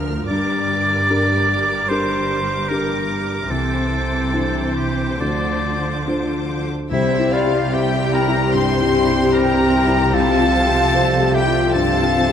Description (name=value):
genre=cinematic, emotional film score for orchestra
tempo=74 BPM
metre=4/4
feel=rubato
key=unclear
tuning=A4 = 440 Hz
part: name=rich symphonic violin section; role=melody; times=0.0-12.3 s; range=E5 to F6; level=-26 LUFS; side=left 4 dB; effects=none
part: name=felt-muted upright piano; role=accompaniment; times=0.0-12.3 s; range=C2 to C5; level=-22 LUFS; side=left 2 dB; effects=none
part: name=rich symphonic viola section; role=accompaniment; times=0.0-12.3 s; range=E3 to C5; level=-27 LUFS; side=right 1 dB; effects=none
part: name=rich symphonic cello section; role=bass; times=0.0-12.3 s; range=D2 to D3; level=-24 LUFS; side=right 2 dB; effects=none
part: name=warm symphonic double bass section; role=bass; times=0.0-12.3 s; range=G1 to D2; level=-26 LUFS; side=right 3 dB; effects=none
part: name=clear oboe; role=second line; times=0.3-12.3 s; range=E4 to D5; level=-23 LUFS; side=right 1 dB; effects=none
part: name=hollow concert flute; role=second line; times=6.9-12.3 s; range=C5 to G5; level=-23 LUFS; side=left 1 dB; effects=none
part: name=warm symphonic violin section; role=second line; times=6.9-12.3 s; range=G3 to G4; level=-26 LUFS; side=left 4 dB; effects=none
part: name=dark French horn section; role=sustained chords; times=6.9-12.3 s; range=G3 to G4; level=-23 LUFS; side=left 8 dB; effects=none
room=moderate concert hall reverb, RT60 2.2 s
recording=none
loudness=-16 LUFS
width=side -8 dB against mid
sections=0.0-6.9 A section; 6.9-12.3 B section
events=none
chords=0.3 Gm; 3.5 Cadd9; 5.2 Dm7; 6.9 C; 10.1 Fadd9/C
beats=| 0.29 1.10 1.90 2.70 | 3.51 4.33 5.21 6.07 | 6.92 7.74 8.54 9.34 | 10.15 10.95 11.76